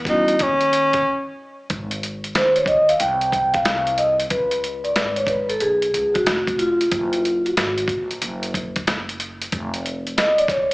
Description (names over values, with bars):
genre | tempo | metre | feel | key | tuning
hip hop, jazz-hop | 92 BPM | 4/4 | swing 64% on 16ths | unclear | A4 = 436 Hz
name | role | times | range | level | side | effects
breathy tenor saxophone | melody | 0.0-1.4 s | C#4 to Eb4 | -18 LUFS | equal | slapback echo
upright bass | bass | 0.0-10.7 s | F1 to E2 | -31 LUFS | equal | none
vibraphone with soft mallets | accompaniment | 0.1-10.7 s | G3 to G5 | -18 LUFS | equal | slapback echo
dusty soul sampler-style drum kit | drums | 0.1-10.7 s | hi-hat, kick drum, snare drum | -24 LUFS | equal | none
room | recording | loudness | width
light reverb, studio reverb | live gig heard through the venue's PA, club reverb, small speaker sound | -18 LUFS | side -21 dB against mid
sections
0.0-1.7 A section; 1.7-10.7 B section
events
break 1.0-1.7; vibraphone solo 1.7-10.7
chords
0.0 A13 (rootless); 1.7 Ab; 4.3 Db7; 6.9 Gb; 9.5 F7(#5, no3)